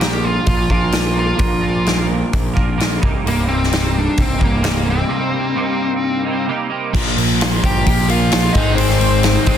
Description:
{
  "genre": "quiet-loud alternative rock",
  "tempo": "130 BPM",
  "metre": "4/4",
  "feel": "straight",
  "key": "unclear",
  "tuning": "A4 = 442 Hz",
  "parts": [
    { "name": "dark smooth lead guitar", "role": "melody", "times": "0.0-9.6 s", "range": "Bb3 to G5", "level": "-20 LUFS", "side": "left 2 dB", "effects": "overdrive" },
    { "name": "twelve-string electric guitar", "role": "arpeggios", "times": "0.0-9.6 s", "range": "C2 to Bb4", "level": "-23 LUFS", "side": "right 4 dB", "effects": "analog chorus" },
    { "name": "fuzz picked electric bass", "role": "bass", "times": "0.0-9.6 s", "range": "C1 to Bb1", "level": "-19 LUFS", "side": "equal", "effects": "overdrive" },
    { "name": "big rock drum kit", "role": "drums", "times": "0.0-9.6 s", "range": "crash cymbal, hi-hat, kick drum, snare drum", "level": "-18 LUFS", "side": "equal", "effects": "none" },
    { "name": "distorted electric guitar", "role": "riff", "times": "6.9-9.6 s", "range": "Ab2 to Bb3", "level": "-21 LUFS", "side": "left 11 dB", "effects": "distortion" },
    { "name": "distorted electric guitar", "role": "riff", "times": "6.9-9.6 s", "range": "Ab2 to Bb4", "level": "-22 LUFS", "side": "right 10 dB", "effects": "distortion" }
  ],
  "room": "light reverb, small room ambience",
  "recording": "dense, heavily limited modern master",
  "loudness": "-14 LUFS",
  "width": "side -9 dB against mid",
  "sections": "0.0-6.9 A section; 6.9-9.6 B section",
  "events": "break 5.1-6.9",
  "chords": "0.0 Bb; 3.0 Cm7; 6.9 Bb5; 8.6 Ab"
}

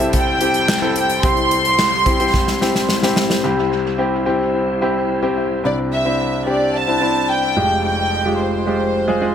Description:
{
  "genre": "piano-driven pop",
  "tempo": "109 BPM",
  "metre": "4/4",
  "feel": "straight",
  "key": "C major",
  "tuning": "A4 = 440 Hz",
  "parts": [
    { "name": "warm studio violin section", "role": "melody", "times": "0.0-9.3 s", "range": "C5 to C6", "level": "-19 LUFS", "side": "right 1 dB", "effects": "dub echo" },
    { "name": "clear concert grand piano", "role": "accompaniment", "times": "0.0-9.3 s", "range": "F1 to A4", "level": "-18 LUFS", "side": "left 1 dB", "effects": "dub echo" },
    { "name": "bright tonewheel organ", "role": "sustained chords", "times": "0.0-5.6 s", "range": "G3 to C5", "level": "-28 LUFS", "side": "left 1 dB", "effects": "overdrive, chorus vibrato, slow rotary speaker" },
    { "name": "natural country drum kit", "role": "drums", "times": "0.0-3.4 s", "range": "handclaps, hi-hat, kick drum, snare drum", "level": "-21 LUFS", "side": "equal", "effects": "dub echo" }
  ],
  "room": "light reverb, small room ambience",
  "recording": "echo-heavy mix",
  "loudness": "-15 LUFS",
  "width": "side -8 dB against mid",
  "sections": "0.0-3.4 A section; 3.4-5.6 B section; 5.6-9.3 C section",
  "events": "drum fill 2.3-3.4",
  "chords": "0.0 C; 5.6 Cadd9; 7.6 Fmadd9"
}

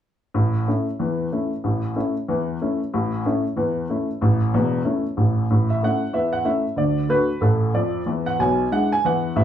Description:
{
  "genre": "jazz, stride piano",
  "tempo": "186 BPM",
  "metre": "4/4",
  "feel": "swing 60% on 8ths",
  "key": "A major",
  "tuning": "A4 = 441 Hz",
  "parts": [
    { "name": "dark baby grand piano", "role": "solo", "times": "0.3-9.4 s", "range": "E1 to G#5", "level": "-19 LUFS", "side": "equal", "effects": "none" }
  ],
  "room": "wet club ambience, RT60 0.5 s",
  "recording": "heard from further back in the room",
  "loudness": "-19 LUFS",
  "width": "side -10 dB against mid",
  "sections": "0.3-5.5 A section; 5.5-9.4 B section",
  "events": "none",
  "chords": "0.3 A; 6.8 D; 8.1 E7"
}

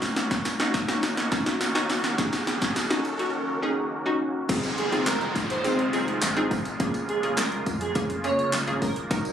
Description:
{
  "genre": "dance-pop",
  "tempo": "104 BPM",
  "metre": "4/4",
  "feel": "straight",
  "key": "Bb minor",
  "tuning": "A4 = 439 Hz",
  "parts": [
    { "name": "analog pluck", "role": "accompaniment", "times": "0.0-9.3 s", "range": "Bb3 to Bb4", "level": "-28 LUFS", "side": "left 1 dB", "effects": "chorus, sidechain pumping, low-pass filter" },
    { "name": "filtered supersaw swell", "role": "sustained chords", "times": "0.0-9.3 s", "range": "Db3 to Gb4", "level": "-31 LUFS", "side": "right 1 dB", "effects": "sidechain pumping, low-pass filter" },
    { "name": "house drum kit", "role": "drums", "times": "0.0-9.3 s", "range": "crash cymbal, handclaps, hi-hat, kick drum, snare drum", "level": "-27 LUFS", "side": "equal", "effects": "none" },
    { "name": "tambourine", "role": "percussion", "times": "0.0-9.3 s", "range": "none", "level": "-41 LUFS", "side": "right 2 dB", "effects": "none" },
    { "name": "riser and downlifter", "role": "sound effects", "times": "0.0-9.1 s", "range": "none", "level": "-33 LUFS", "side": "equal", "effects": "none" },
    { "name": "saturated sub bass", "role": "bass", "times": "4.5-9.3 s", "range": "Eb1 to F2", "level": "-39 LUFS", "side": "left 1 dB", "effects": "sidechain pumping" },
    { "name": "airy dreamy lead", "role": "melody", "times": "4.8-8.9 s", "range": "Ab4 to Db5", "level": "-30 LUFS", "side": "right 2 dB", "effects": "chorus, ping-pong delay" }
  ],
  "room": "moderate digital room reverb, RT60 1.1 s",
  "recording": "recorded on a phone in the room, club reverb, compression",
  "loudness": "-23 LUFS",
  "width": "side -9 dB against mid",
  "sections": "0.0-4.5 A section; 4.5-9.3 B section",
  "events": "build-up 0.0-4.5; drum fill 0.0-3.3; riser 0.0-4.5; drop 4.5-9.3",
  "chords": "0.0 Ebm7; 4.5 Fm7; 6.8 Bbm7/F"
}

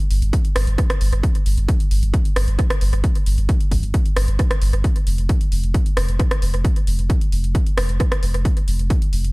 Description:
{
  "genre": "driving peak-time techno",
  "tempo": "133 BPM",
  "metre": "4/4",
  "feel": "straight",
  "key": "unclear",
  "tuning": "A4 = 440 Hz",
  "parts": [
    { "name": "techno drum kit", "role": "drums", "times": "0.0-9.3 s", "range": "hi-hat, rim click", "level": "-27 LUFS", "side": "right 1 dB", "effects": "overdrive, small room ambience, analog delay" },
    { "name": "saturated sub bass", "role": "bass", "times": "0.1-9.3 s", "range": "F1 to G1", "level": "-20 LUFS", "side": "equal", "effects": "tube saturation, sidechain pumping, low-pass filter" },
    { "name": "electronic kick drum", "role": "drums", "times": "0.3-9.0 s", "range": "none", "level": "-18 LUFS", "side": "equal", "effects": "overdrive, small room ambience" }
  ],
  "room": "little or no reverb",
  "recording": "echo-heavy mix",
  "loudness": "-16 LUFS",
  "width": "side -24 dB against mid",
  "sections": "0.0-9.3 A section",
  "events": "none",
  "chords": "none"
}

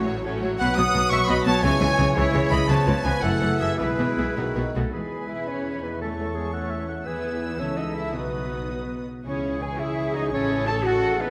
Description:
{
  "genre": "classical, dramatic, fast romantic movement for symphony orchestra",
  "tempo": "104-116 BPM (dotted quarters)",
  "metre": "6/8",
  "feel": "rubato",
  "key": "E major",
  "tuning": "A4 = 440 Hz",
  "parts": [
    { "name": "warm symphonic violin section", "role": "melody", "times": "0.0-11.3 s", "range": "B4 to E6", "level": "-34 LUFS", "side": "equal", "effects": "none" },
    { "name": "silver concert flute", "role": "second line", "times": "0.0-11.3 s", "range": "G#4 to D#6", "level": "-35 LUFS", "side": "equal", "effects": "none" },
    { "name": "warm chamber violin section", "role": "second line", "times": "0.0-11.3 s", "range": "B3 to C#5", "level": "-40 LUFS", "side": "equal", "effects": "none" },
    { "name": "warm oboe", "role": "second line", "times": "0.0-11.3 s", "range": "G#4 to D#6", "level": "-35 LUFS", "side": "equal", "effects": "none" },
    { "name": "clear symphonic viola section", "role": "accompaniment", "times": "0.0-11.3 s", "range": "E3 to B4", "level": "-36 LUFS", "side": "equal", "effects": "none" },
    { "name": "mellow French horn section", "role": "sustained chords", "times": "0.0-11.3 s", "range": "E3 to F#4", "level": "-35 LUFS", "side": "equal", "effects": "none" },
    { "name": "concert harp", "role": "arpeggios", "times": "0.0-11.3 s", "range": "F#2 to E5", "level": "-33 LUFS", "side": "equal", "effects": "none" },
    { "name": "warm trumpet section", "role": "stabs", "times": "0.0-11.3 s", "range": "E4 to F#5", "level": "-34 LUFS", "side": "equal", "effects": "none" },
    { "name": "rich studio double bass section", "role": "bass", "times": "0.0-11.3 s", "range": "F#1 to E2", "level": "-33 LUFS", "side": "equal", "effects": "none" },
    { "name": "rich symphonic cello section", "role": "bass", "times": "0.0-11.3 s", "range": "F#2 to A4", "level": "-31 LUFS", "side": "equal", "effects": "none" },
    { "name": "clear clarinet", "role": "second line", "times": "0.1-11.3 s", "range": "F#4 to A5", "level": "-35 LUFS", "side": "equal", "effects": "none" },
    { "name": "warm bassoon", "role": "accompaniment", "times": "0.1-4.7 s", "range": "D#3 to F#3", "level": "-35 LUFS", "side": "equal", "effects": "none" }
  ],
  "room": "wet scoring stage reverb, RT60 1.9 s",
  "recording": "none",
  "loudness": "-24 LUFS",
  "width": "mono",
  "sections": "0.0-4.9 A section; 4.9-11.3 B section",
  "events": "none",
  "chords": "0.0 F#m/A; 0.6 B; 1.6 C#m; 2.7 C#7; 3.2 F#m7; 3.8 E/B; 4.4 B; 4.9 E; 6.0 A/E; 7.1 E; 7.6 A/C#; 8.2 B; 9.3 C#m; 10.3 Amaj7"
}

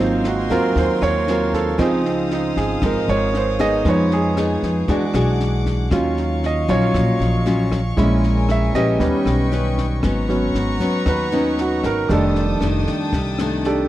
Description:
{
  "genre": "bossa nova",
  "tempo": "116 BPM",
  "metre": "4/4",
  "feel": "straight",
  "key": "Eb minor",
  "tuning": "A4 = 439 Hz",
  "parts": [
    { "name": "clear concert grand piano", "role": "accompaniment", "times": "0.0-13.9 s", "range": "Eb3 to Fb5", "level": "-20 LUFS", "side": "right 3 dB", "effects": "none" },
    { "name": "nylon-string guitar", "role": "accompaniment", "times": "0.0-13.9 s", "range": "F2 to Cb5", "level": "-22 LUFS", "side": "left 2 dB", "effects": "none" },
    { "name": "rich studio violin section", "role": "sustained chords", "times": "0.0-13.9 s", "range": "D4 to Eb6", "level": "-30 LUFS", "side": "left 2 dB", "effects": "none" },
    { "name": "upright bass", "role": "bass", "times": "0.0-13.9 s", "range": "F1 to F2", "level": "-22 LUFS", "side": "equal", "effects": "none" },
    { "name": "compact cocktail drum kit", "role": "drums", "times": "0.2-13.7 s", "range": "kick drum, rim click, snare drum", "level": "-26 LUFS", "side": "left 1 dB", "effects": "none" }
  ],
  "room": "little or no reverb",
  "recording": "dry, close 1970s-style studio recording",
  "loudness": "-16 LUFS",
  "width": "side -14 dB against mid",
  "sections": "0.0-10.0 A section; 10.0-13.9 A section",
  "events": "grand piano solo 0.0-13.9",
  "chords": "0.0 Ab13; 1.8 Dbmaj9; 3.9 Fm7b5; 4.9 E9; 5.9 Ebm9; 8.0 Bbm7b5; 9.0 Ebaug7; 10.0 G#m11; 12.1 F13"
}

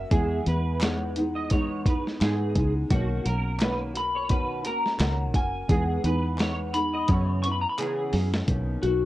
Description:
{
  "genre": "indie pop, bedroom pop",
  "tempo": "86 BPM",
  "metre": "4/4",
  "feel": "swing 55% on 16ths",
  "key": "B major",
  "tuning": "A4 = 440 Hz",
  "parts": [
    { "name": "electric guitar through a small old amp", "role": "melody", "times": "0.0-9.1 s", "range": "F#4 to C#6", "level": "-29 LUFS", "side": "left 3 dB", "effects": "analog chorus" },
    { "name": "flamenco guitar", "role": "accompaniment", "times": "0.0-9.1 s", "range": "F#2 to F#4", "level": "-31 LUFS", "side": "left 1 dB", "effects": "lush chorus, vibrato effect" },
    { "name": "fingered electric bass", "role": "bass", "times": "0.0-9.1 s", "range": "F#1 to G#2", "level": "-27 LUFS", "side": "equal", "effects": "none" },
    { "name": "electric guitar through a small old amp", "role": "second line", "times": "0.1-8.3 s", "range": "F#4 to D#5", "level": "-32 LUFS", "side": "right 3 dB", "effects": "ensemble chorus, tape echo" },
    { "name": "dusty soul sampler-style drum kit", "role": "drums", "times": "0.1-9.0 s", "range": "hi-hat, kick drum, snare drum", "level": "-26 LUFS", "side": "equal", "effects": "none" },
    { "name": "group handclap", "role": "percussion", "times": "0.8-8.0 s", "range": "none", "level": "-40 LUFS", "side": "left 1 dB", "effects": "none" }
  ],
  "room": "light reverb",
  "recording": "worn, warbling old tape, cassette tape, warbly pitch drift",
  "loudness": "-23 LUFS",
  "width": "side -15 dB against mid",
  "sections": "0.0-8.5 A section",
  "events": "drum fill 7.1-8.5",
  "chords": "0.1 Emaj7; 2.9 Bmaj9; 5.7 Emaj7; 7.1 F#7sus4; 8.5 Bmaj9"
}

